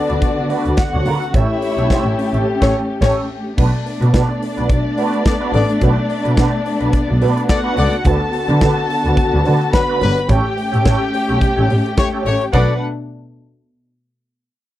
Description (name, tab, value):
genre	disco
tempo	107 BPM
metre	4/4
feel	swing 56% on 16ths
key	B minor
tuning	A4 = 440 Hz
part	dark studio violin section	second line	0.0-12.8 s	C#4 to B5	-22 LUFS	left 1 dB	none
part	dark studio string section	sustained chords	0.0-12.8 s	B2 to G4	-22 LUFS	left 2 dB	none
part	warm horn section	stabs	0.0-12.7 s	F#3 to D5	-20 LUFS	left 5 dB	none
part	mellow electric guitar	accompaniment	0.1-12.7 s	A3 to E5	-24 LUFS	right 7 dB	wah
part	dark double bass	bass	0.1-12.6 s	G1 to D3	-18 LUFS	equal	none
part	modern studio drum kit	drums	0.1-12.7 s	crash cymbal, hi-hat, kick drum, snare drum	-17 LUFS	equal	none
room	little or no reverb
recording	dry, close 1970s-style studio recording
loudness	-14 LUFS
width	side -14 dB against mid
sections	0.0-3.6 A section; 3.6-12.5 B section; 12.5-14.8 C section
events	band accent 2.5-3.6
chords	0.0 D6; 1.3 A7; 3.6 Bm7; 8.1 D6; 10.3 A7; 12.5 Bm7